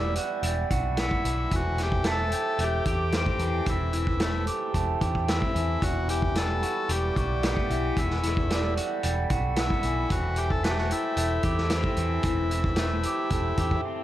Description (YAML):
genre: psychedelic rock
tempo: 112 BPM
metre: 4/4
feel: straight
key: unclear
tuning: A4 = 439 Hz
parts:
  - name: overdriven combo organ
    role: melody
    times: 0.0-13.8 s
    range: E4 to A4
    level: -31 LUFS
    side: left 2 dB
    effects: analog delay
  - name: hand-pumped harmonium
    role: sustained chords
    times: 0.0-14.0 s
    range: E4 to G5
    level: -39 LUFS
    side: right 4 dB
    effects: none
  - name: electric guitar through a small old amp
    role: riff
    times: 0.0-14.0 s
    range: E2 to G4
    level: -30 LUFS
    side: right 1 dB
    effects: phaser
  - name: picked electric bass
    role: bass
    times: 0.0-13.8 s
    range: E1 to E2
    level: -29 LUFS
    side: equal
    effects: none
  - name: vintage drum kit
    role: drums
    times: 0.2-13.8 s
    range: hi-hat, kick drum, snare drum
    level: -29 LUFS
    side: equal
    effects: none
room: small room reverb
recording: none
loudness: -24 LUFS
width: side -13 dB against mid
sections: 0.0-14.0 A section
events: break 13.8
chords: 0.0 Emadd9; 1.5 Am7/E; 5.8 Emadd9; 10.1 Am7/E